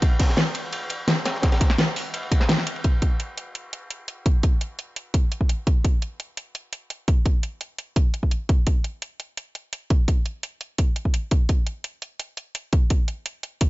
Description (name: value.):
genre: drum and bass.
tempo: 170 BPM.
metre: 4/4.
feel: straight.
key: none.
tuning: none.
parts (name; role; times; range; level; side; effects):
crunchy breakbeat drum kit; drums; 0.0-2.8 s; hi-hat, ride cymbal, snare drum; -30 LUFS; equal; high-pass filter on cymbals, studio ambience, high-pass filter on hats, high-pass filter on snare, high-pass filter on room.
electronic kick drum; drums; 0.0-13.7 s; none; -19 LUFS; equal; studio ambience.
pop drum kit; drums; 0.0-13.7 s; hi-hat, snare drum; -26 LUFS; equal; studio ambience.
room: small room ambience.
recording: nothing above 7.7 kHz.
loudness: -21 LUFS.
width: side -20 dB against mid.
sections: 0.0-2.8 A section; 2.8-13.7 B section.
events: kick drops out 2.5-2.8.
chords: none.